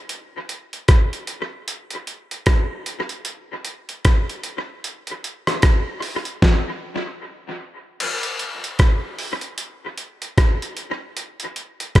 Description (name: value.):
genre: reggae.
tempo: 76 BPM.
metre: 4/4.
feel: swing 60% on 16ths.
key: none.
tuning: none.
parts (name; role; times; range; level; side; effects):
boom bap sampler-style drum kit; drums; 0.1-12.0 s; crash cymbal, hi-hat, kick drum, rim click, snare drum; -19 LUFS; equal; dub echo.
room: light reverb.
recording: none.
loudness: -20 LUFS.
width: side -15 dB against mid.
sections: 0.0-8.0 A section; 8.0-12.0 B section.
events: none.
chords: none.